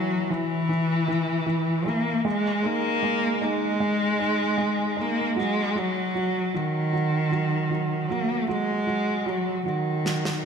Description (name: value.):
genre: pop ballad.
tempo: 77 BPM.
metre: 4/4.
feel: straight.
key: unclear.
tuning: A4 = 439 Hz.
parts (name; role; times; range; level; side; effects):
warm cello; melody; 0.0-10.4 s; D#3 to A#3; -24 LUFS; left 1 dB; none.
felt-muted upright piano; accompaniment; 0.0-10.4 s; E3 to D#4; -29 LUFS; right 4 dB; none.
snare drum; drums; 10.1-10.4 s; none; -27 LUFS; equal; gated reverb.
room: moderate lush hall reverb, RT60 2.6 s.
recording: bright 1980s-style digital production.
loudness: -23 LUFS.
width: side -6 dB against mid.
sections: 0.0-10.4 A section.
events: drum fill 10.0-10.4.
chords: 0.0 N.C.; 2.3 G#5; 5.4 N.C..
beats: 0.70 1.48 | 2.26 3.04 3.81 4.59 | 5.37 6.15 6.93 7.71 | 8.49 9.27 10.05.